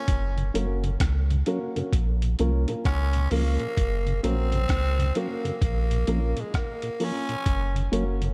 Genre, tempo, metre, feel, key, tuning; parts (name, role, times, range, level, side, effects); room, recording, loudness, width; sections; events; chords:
dub reggae; 65 BPM; 4/4; swing 63% on 16ths; A4 = 438 Hz
growling tenor saxophone; melody; 0.0-7.9 s; Ab3 to Db4; -34 LUFS; equal; dub echo
warm sub bass; bass; 0.1-8.3 s; Gb1 to Db2; -27 LUFS; equal
trip hop sampler-style drum kit; drums; 0.1-8.3 s; hi-hat, kick drum, rim click; -30 LUFS; equal
mellow tonewheel organ; accompaniment; 0.4-8.3 s; Gb2 to Db4; -35 LUFS; equal; chorus vibrato, slow rotary speaker, dub echo
dark upright piano; stabs; 0.5-8.2 s; Bb3 to Bb4; -35 LUFS; equal; dub echo
digital ambience; echo-heavy mix; -26 LUFS; mono
0.0-8.3 A section
0.1 Gb; 1.9 Bbm; 3.8 Gb; 5.6 Bbm; 7.5 Gb